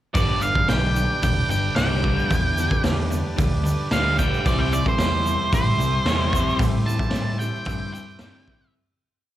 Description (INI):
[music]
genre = garage rock duo or trio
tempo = 112 BPM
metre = 4/4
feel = straight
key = G major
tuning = A4 = 440 Hz
[part]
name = octave-fuzz lead guitar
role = melody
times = 0.1-8.7 s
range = C5 to A5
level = -25 LUFS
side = right 1 dB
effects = distortion, slapback echo
[part]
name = combo organ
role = sustained chords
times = 0.1-8.7 s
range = D4 to C5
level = -32 LUFS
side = right 2 dB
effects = none
[part]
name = crunchy overdriven guitar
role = riff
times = 0.1-8.7 s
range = G2 to C4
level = -28 LUFS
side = left 1 dB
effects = slapback echo
[part]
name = raw garage drum kit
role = drums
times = 0.1-8.6 s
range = hi-hat, kick drum, snare drum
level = -24 LUFS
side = equal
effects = none
[part]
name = picked electric bass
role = bass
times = 0.2-8.6 s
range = E1 to A2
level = -24 LUFS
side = equal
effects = none
[part]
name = egg shaker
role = percussion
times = 0.2-8.7 s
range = none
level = -42 LUFS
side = right 2 dB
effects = none
[sound]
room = little or no reverb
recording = live gig heard through the venue's PA, club reverb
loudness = -19 LUFS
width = side -13 dB against mid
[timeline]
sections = 0.2-8.8 verse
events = fade-out 6.6-8.8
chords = 0.2 G; 4.5 C